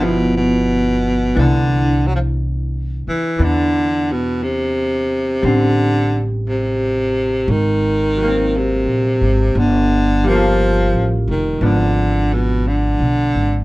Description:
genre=jazz ballad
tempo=58 BPM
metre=4/4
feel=swing 68% on 8ths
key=unclear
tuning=A4 = 440 Hz
part: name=breathy baritone saxophone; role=melody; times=0.0-13.6 s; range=B2 to F#3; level=-17 LUFS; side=equal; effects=none
part: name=vintage hollow-body jazz guitar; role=accompaniment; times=0.0-13.6 s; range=E3 to A4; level=-22 LUFS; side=equal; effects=none
part: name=upright bass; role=bass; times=0.0-13.6 s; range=F1 to E2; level=-18 LUFS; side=equal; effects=none
room=moderate studio ambience, RT60 0.5 s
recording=none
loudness=-14 LUFS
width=side -20 dB against mid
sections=0.0-13.6 A section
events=none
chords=0.0 G6; 1.4 Cmaj9; 5.4 Am7; 7.5 Ab9; 9.6 Gm9; 11.6 G#dim7

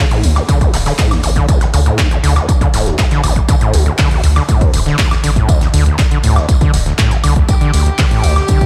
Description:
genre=acid house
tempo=120 BPM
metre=4/4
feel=straight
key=unclear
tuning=A4 = 440 Hz
part: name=overdriven acid bass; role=riff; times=0.0-8.7 s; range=D1 to D3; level=-19 LUFS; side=equal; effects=distortion, tape echo
part: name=punchy analog drum machine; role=drums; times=0.1-8.7 s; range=handclaps, hi-hat, woodblock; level=-23 LUFS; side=equal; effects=none
part: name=round analog bass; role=bass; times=0.2-8.4 s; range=D1 to D2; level=-15 LUFS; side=equal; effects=sidechain pumping
part: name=loose indie drum kit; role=drums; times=0.2-8.6 s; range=hi-hat, snare drum, tambourine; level=-31 LUFS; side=equal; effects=high-pass filter on hats, high-pass filter on snare, high-pass filter on perc, high-pass filter on room
part: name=electronic kick drum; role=drums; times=0.5-8.7 s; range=none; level=-16 LUFS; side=equal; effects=none
part: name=rich chamber string section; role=sustained chords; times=7.5-8.7 s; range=G4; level=-24 LUFS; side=equal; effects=sidechain pumping
room=light reverb, studio reverb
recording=none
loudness=-13 LUFS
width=mono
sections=0.0-8.7 A section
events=none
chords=0.0 D5

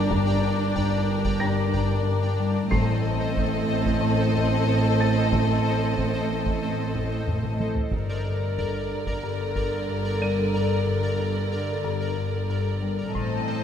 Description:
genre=cinematic, suspense film score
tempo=92 BPM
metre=4/4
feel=straight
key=G minor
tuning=A4 = 441 Hz
part: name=warm chamber violin section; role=melody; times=0.0-13.6 s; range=D5 to Eb5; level=-35 LUFS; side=left 6 dB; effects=none
part: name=warm studio violin section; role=second line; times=0.0-13.6 s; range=A4 to Bb4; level=-31 LUFS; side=left 4 dB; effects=none
part: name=warm chamber viola section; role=accompaniment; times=0.0-13.6 s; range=D3 to D4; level=-31 LUFS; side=right 3 dB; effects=none
part: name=pulsing gated texture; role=sustained chords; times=0.0-13.6 s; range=A4 to Bb5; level=-33 LUFS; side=equal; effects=chorus, built-in reverb
part: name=dark chamber cello section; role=bass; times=0.0-13.6 s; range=G2 to A2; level=-28 LUFS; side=right 4 dB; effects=none
part: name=warm chamber double bass section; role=bass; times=0.0-13.6 s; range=G1 to A1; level=-32 LUFS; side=right 4 dB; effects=none
part: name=warm concert grand piano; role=texture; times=0.0-13.2 s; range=D5 to Eb7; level=-36 LUFS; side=right 1 dB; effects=none
part: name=buzzing marimba with hard mallets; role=riff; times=0.1-13.6 s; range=G2 to A3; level=-28 LUFS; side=left 5 dB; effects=none
part: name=taiko ensemble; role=drums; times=0.1-13.6 s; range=none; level=-31 LUFS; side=equal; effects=none
room=moderate scoring stage reverb, RT60 1.7 s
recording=none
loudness=-22 LUFS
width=side -8 dB against mid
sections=0.0-13.6 A section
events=drum fill 7.3-7.9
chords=0.0 Gm; 2.7 Adim; 7.9 Gm

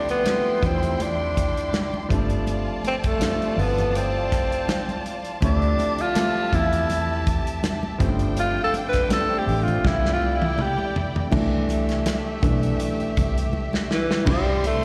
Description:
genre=lush 1970s-style soul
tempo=81 BPM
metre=4/4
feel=swing 54% on 16ths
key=unclear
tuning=A4 = 440 Hz
part: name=breathy tenor saxophone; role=melody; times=0.0-14.8 s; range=E3 to B4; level=-26 LUFS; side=equal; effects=slapback echo
part: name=warm studio violin section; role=second line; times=0.0-14.8 s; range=A3 to C6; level=-34 LUFS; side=equal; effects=slapback echo
part: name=warm baby grand piano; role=accompaniment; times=0.0-14.8 s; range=C3 to F4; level=-31 LUFS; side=equal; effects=slapback echo
part: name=warm soul drum kit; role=drums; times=0.1-14.8 s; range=crash cymbal, hi-hat, kick drum, snare drum, toms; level=-28 LUFS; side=equal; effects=none
part: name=congas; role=percussion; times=0.3-14.8 s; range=none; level=-35 LUFS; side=equal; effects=slapback echo
part: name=vintage muted fingered electric bass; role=bass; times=0.6-14.7 s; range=G1 to E2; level=-27 LUFS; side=equal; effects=none
room=light reverb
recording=live gig heard through the venue's PA, recital hall reverb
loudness=-23 LUFS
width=mono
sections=0.0-11.3 A section; 11.3-14.3 B section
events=tenor saxophone solo 0.0-11.3; drum fill 9.8-11.3, 13.5-14.3; grand piano solo 11.3-14.3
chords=0.0 Dm11; 2.1 G9sus4; 5.4 Dm11; 8.0 G9sus4; 9.8 C69; 14.3 C

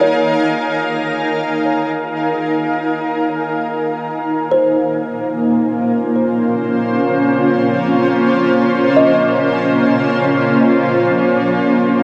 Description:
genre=ambient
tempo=free time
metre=none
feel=none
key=Bb minor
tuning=A4 = 444 Hz
part: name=granular cloud pad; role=sustained chords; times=0.0-12.0 s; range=Bb3 to Ab5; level=-16 LUFS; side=equal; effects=built-in reverb
part: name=kalimba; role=arpeggios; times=0.0-11.6 s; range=C5 to Eb5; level=-23 LUFS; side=equal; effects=delay
part: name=bowed-like drone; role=drone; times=0.1-12.0 s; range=Bb3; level=-34 LUFS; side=equal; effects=none
part: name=backwards swelling texture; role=texture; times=0.0-3.6 s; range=Bb5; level=-32 LUFS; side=equal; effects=built-in reverb
room=wet huge ambient reverb, RT60 8.5 s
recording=worn, warbling old tape, cassette tape, warbly pitch drift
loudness=-16 LUFS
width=mono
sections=0.0-3.6 A section; 3.6-12.0 B section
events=none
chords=0.0 Bbm7

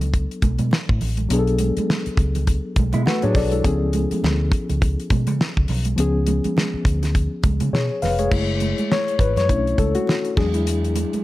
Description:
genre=lush 1970s-style soul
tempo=103 BPM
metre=4/4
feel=swing 58% on 16ths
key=unclear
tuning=A4 = 440 Hz
part: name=mellow reed electric piano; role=accompaniment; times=0.0-11.2 s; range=E#3 to E#5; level=-23 LUFS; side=left 3 dB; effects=fast tremolo
part: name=vintage muted fingered electric bass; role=bass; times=0.0-11.0 s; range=E#1 to C#3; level=-22 LUFS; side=equal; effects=none
part: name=damped 70s drum kit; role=drums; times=0.0-11.2 s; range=crash cymbal, hi-hat, kick drum, snare drum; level=-22 LUFS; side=equal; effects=none
part: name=congas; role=percussion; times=0.0-11.2 s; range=none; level=-29 LUFS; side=right 7 dB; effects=none
part: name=mellow electric guitar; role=riff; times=2.9-3.6 s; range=F#3 to F#4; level=-26 LUFS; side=right 3 dB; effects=spring reverb
room=studio reverb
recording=none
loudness=-18 LUFS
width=side -16 dB against mid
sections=0.0-8.3 A section; 8.3-11.2 B section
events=reed electric piano solo 8.3-11.2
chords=0.0 Bm7; 3.6 C#7; 8.3 F#m9; 9.5 Bm11; 10.4 E7

